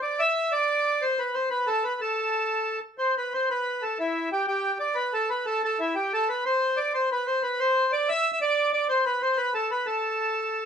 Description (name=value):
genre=celtic folk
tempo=122 BPM (dotted quarters)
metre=6/8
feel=straight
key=A minor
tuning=A4 = 441 Hz
part: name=accordion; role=solo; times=0.0-10.6 s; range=E4 to E5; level=-23 LUFS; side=equal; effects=none
room=moderate studio reverb, RT60 0.6 s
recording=band playing live in one room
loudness=-23 LUFS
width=side -7 dB against mid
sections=0.0-3.0 A section; 3.0-10.7 A section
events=none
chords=none